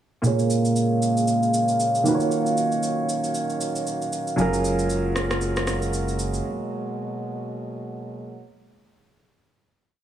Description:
amapiano; 116 BPM; 4/4; swing 58% on 16ths; G# dorian; A4 = 439 Hz
warm baby grand piano; accompaniment; 0.2-6.5 s; A#2 to C#5; -23 LUFS; right 2 dB; low-pass filter
mellow French horn section; sustained chords; 0.2-8.5 s; B2 to E#5; -26 LUFS; equal; low-pass filter
electronic shaker and rim click; drums; 0.2-6.4 s; -31 LUFS; equal; overdrive
warm sub bass; bass; 4.4-6.4 s; F#1; -28 LUFS; equal
light reverb; small room ambience; -21 LUFS; side -10 dB against mid
0.2-8.5 breakdown
filter sweep 0.2-8.5
0.2 A#m7; 2.1 D#m9; 4.4 F#maj9; 6.4 G#m9

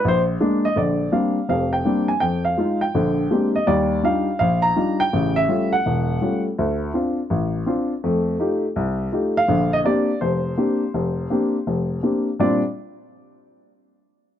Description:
solo jazz; 165 BPM; 4/4; swing 65% on 8ths; Bb major; A4 = 439 Hz
warm upright piano; solo; 0.0-12.6 s; E1 to Bb5; -18 LUFS; left 1 dB
little or no reverb; dry, close 1970s-style studio recording; -18 LUFS; side -10 dB against mid
0.8-12.4 A section; 12.4-13.9 B section
0.0 Bb7; 0.8 Bb69; 2.2 Fm7; 2.9 Bb13; 3.7 Ebmaj9; 5.1 A7b13; 6.6 Dm7; 8.0 F9; 9.5 Bb69

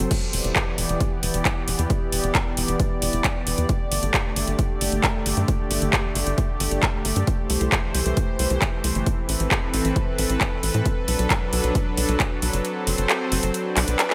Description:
uplifting trance; 134 BPM; 4/4; straight; E minor; A4 = 440 Hz
supersaw pad; sustained chords; 0.0-14.1 s; D3 to D5; -29 LUFS; equal; sidechain pumping, low-pass filter
tight sequencer bass; bass; 0.0-14.0 s; E1 to A2; -27 LUFS; equal; sidechain pumping
techno drum kit; drums; 0.0-14.1 s; crash cymbal, handclaps, hi-hat; -27 LUFS; equal; studio reverb
electronic kick drum; drums; 0.1-12.3 s; -27 LUFS; equal; studio reverb
light reverb; -23 LUFS; mono
0.0-14.1 A section
filter sweep on supersaw synth 0.0-14.1; kick drops out 12.6-14.1
0.1 Em7; 3.7 Gsus2; 7.3 C6; 9.1 Amadd9; 10.9 Bm7; 12.6 F#dim; 13.5 Bm

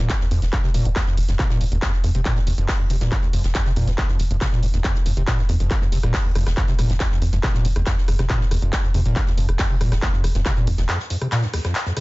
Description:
driving peak-time techno; 139 BPM; 4/4; straight; A4 = 440 Hz
overdriven acid bass; riff; 0.0-12.0 s; Eb2 to C3; -25 LUFS; equal; wide subtle chorus, sidechain pumping
tight sequencer bass; bass; 0.0-10.9 s; F1 to F2; -21 LUFS; equal; sidechain pumping
electronic kick drum; drums; 0.1-10.5 s; -21 LUFS; equal; distortion
jazz brush drum kit; drums; 0.1-12.0 s; hi-hat, snare drum; -38 LUFS; left 2 dB; sidechain pumping on hats, high-pass filter on hats, high-pass filter on snare, high-pass filter on room
punchy analog drum machine; drums; 0.1-12.0 s; handclaps, hi-hat, rim click; -28 LUFS; left 1 dB; sidechain pumping on hats
noise sweep; sound effects; 11.5-12.0 s; -41 LUFS; right 2 dB
digital ambience; nothing above 7.8 kHz; -18 LUFS; side -22 dB against mid
0.0-12.0 A section
break 10.9-12.0

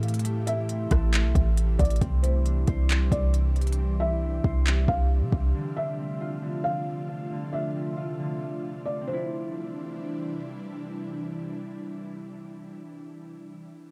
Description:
hip hop, atmospheric cloud-rap; 136 BPM; 4/4; half-time; C major; A4 = 440 Hz
ethereal airy pad; sustained chords; 0.0-12.9 s; C3 to G4; -37 LUFS; equal; ensemble chorus, built-in reverb
concert harp; arpeggios; 0.0-13.0 s; D3 to C5; -39 LUFS; equal; low-pass filter, digital delay
clean 808-style bass; bass; 0.0-5.5 s; A1 to C3; -26 LUFS; equal
smooth R&B drum kit; drums; 0.0-5.4 s; handclaps, hi-hat, kick drum, rim click; -30 LUFS; equal; overdrive
felt-muted upright piano; melody; 0.5-10.4 s; C5 to F5; -36 LUFS; equal; low-pass filter, digital delay
little or no reverb; dark, warm production; -27 LUFS; mono
0.0-2.0 A section; 2.0-9.1 B section; 9.1-12.6 C section
0.0 Am; 2.0 Cadd9; 5.5 Dm7; 9.1 Cadd9

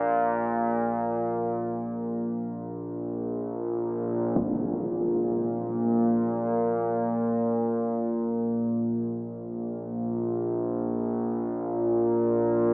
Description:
dark ambient drone; free time; A4 = 439 Hz
analog drone; drone; 0.0-12.7 s; Bb1 to Bb2; -28 LUFS; equal; chorus
impact; percussion; 4.4-4.6 s; -37 LUFS; equal
wet cathedral reverb, RT60 5.2 s; AM radio sound; -28 LUFS; mono
0.0-4.4 A section; 4.4-12.7 B section

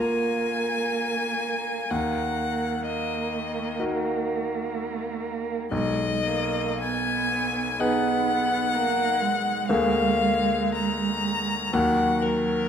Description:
classical, slow romantic movement for piano trio; 53-66 BPM; 4/4; rubato; Eb minor; A4 = 440 Hz
clear violin; melody; 0.0-12.7 s; Bb4 to Bb5; -26 LUFS; left 4 dB
warm cello; second line; 0.0-12.7 s; Gb3 to Cb4; -29 LUFS; right 7 dB
bright grand piano; accompaniment; 0.0-12.7 s; Cb2 to Cb5; -27 LUFS; left 1 dB
moderate scoring stage reverb, RT60 1.7 s; -23 LUFS; side -8 dB against mid
0.0-12.7 A section
0.0 Bb7/D; 1.9 Ebm; 5.7 Abm/Cb; 9.7 Bb7/D; 11.7 Ebm

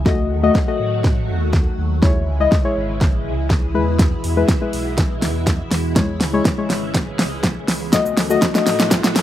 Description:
dance-pop; 122 BPM; 4/4; straight; C# minor; A4 = 438 Hz
string machine, violins; sustained chords; 0.0-9.2 s; B2 to F#4; -26 LUFS; equal; phaser, ensemble chorus, sidechain pumping
sub bass with octave; bass; 0.0-9.2 s; G#1 to A2; -23 LUFS; equal; sidechain pumping
deep mellow chord stab; accompaniment; 0.1-9.1 s; G#3 to D#5; -20 LUFS; left 5 dB; chorus, sidechain pumping
pop drum kit; drums; 0.1-9.2 s; hi-hat, kick drum, shaker, snare drum; -17 LUFS; equal
riser; sound effects; 7.6-9.2 s; -31 LUFS; right 2 dB
light reverb; rough home demo mix, high-pass filter; -16 LUFS; side -12 dB against mid
0.0-9.2 A section
build-up 0.0-9.2; drum fill 0.0-9.2; filter sweep 0.0-9.2
0.1 D#dim; 2.0 C#m; 3.7 E; 6.0 C#m; 7.9 D#dim

